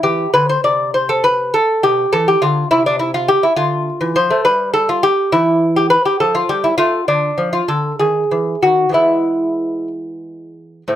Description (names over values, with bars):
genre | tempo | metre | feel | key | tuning
classical, baroque-style dance for lute | 61-69 BPM (dotted quarters) | 6/8 | rubato | unclear | A4 = 440 Hz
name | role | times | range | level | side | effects
lute | solo | 0.0-11.0 s | A2 to D5 | -13 LUFS | equal | none
room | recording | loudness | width
moderate studio reverb, RT60 0.5 s | none | -13 LUFS | side -11 dB against mid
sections
0.0-10.9 A section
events
none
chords
0.0 C; 1.8 G13/B; 2.7 N.C.; 3.6 Dm; 4.5 N.C.; 6.2 F; 7.1 Dm; 8.0 D#madd11; 9.0 E